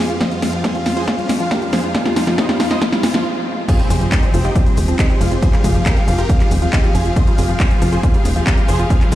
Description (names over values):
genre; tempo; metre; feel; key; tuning
uplifting trance; 138 BPM; 4/4; straight; F minor; A4 = 439 Hz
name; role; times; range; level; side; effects
big supersaw lead; melody; 0.0-9.2 s; Ab3 to F5; -24 LUFS; equal; phaser, cassette tape, sidechain pumping, ping-pong delay
rich symphonic string section; sustained chords; 0.0-9.2 s; F2 to Ab4; -25 LUFS; equal; sidechain pumping
tight sequenced synth; arpeggios; 0.0-9.2 s; F3 to F4; -24 LUFS; left 1 dB; chorus, sidechain pumping, ping-pong delay
riser and impact; sound effects; 0.1-5.4 s; none; -26 LUFS; right 1 dB; none
house drum kit; drums; 0.1-9.2 s; crash cymbal, handclaps, hi-hat, shaker, snare drum; -21 LUFS; equal; none
electronic kick drum; drums; 0.2-9.2 s; none; -16 LUFS; equal; high-pass filter on kick
tight sequencer bass; bass; 3.9-9.2 s; Eb1 to F1; -17 LUFS; equal; sidechain pumping
room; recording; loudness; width
light reverb; played on a big sound system in a bare room, stone room reverb; -14 LUFS; side -14 dB against mid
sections
0.0-3.7 A section; 3.7-9.2 B section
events
build-up 0.0-3.7; drum fill 0.0-3.3; filter sweep on synth arpeggio sound 0.0-3.7; riser 0.1-3.3; break 3.3-3.7; drop 3.7-9.2; impact 3.7-5.4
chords
0.0 Fmadd9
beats
| 0.21 0.64 1.08 1.51 | 1.95 2.38 2.82 3.25 | 3.69 4.12 4.55 4.99 | 5.42 5.86 6.29 6.73 | 7.16 7.60 8.03 8.47 | 8.90